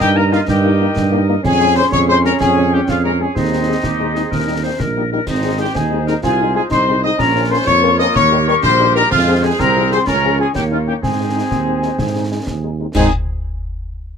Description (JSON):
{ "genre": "military-style march for wind band", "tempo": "125 BPM (dotted quarters)", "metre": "6/8", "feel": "straight", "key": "Ab major", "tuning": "A4 = 439 Hz", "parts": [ { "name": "mellow trumpet section", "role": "melody", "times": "0.0-13.1 s", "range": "Eb4 to Eb5", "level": "-21 LUFS", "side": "equal", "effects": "none" }, { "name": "mellow wooden piccolo", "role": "second line", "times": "0.0-13.1 s", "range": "Eb5 to Eb6", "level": "-19 LUFS", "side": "left 4 dB", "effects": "none" }, { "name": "mellow woodwind section", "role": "second line", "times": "0.0-13.1 s", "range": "Eb4 to Eb5", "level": "-24 LUFS", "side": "left 1 dB", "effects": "none" }, { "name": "clear trombone section", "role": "sustained chords", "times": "0.0-13.1 s", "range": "Eb3 to F4", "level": "-22 LUFS", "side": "right 2 dB", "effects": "none" }, { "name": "mellow tuba", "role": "bass", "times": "0.0-13.1 s", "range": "Ab1 to Ab2", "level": "-18 LUFS", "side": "right 3 dB", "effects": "none" }, { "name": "concert snare drum, concert bass drum and clash cymbals", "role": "drums", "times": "0.0-13.1 s", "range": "none", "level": "-24 LUFS", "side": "left 1 dB", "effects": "none" }, { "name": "mellow French horn section", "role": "accompaniment", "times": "0.2-13.1 s", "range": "F3 to Bb4", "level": "-21 LUFS", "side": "left 6 dB", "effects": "none" } ], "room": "little or no reverb", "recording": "close, detailed microphones", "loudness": "-13 LUFS", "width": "side -7 dB against mid", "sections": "0.0-12.9 A section", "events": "none", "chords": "0.0 Eb/G; 1.4 Db/F; 3.4 Ab/Eb; 4.3 Eb; 5.3 Ab; 6.2 Ab/C; 7.2 Bbm; 8.2 Eb7; 9.1 Fm; 10.1 Db; 10.5 Eb5; 11.0 Ab" }